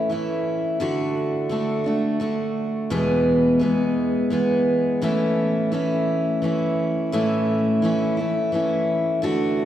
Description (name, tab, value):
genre	country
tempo	86 BPM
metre	3/4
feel	straight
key	A major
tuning	A4 = 440 Hz
part	picked steel-string acoustic guitar	solo	0.0-9.7 s	E2 to G#4	-20 LUFS	equal	none
room	wet church reverb, RT60 3.4 s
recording	recorded in a church or concert hall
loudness	-20 LUFS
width	side -11 dB against mid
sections	0.0-5.0 A section; 5.0-9.7 B section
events	none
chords	0.0 A; 0.8 D; 2.9 E; 5.0 A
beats	0.10 | 0.80 1.51 2.21 | 2.91 3.61 4.31 | 5.01 5.72 6.42 | 7.12 7.82 8.53 | 9.23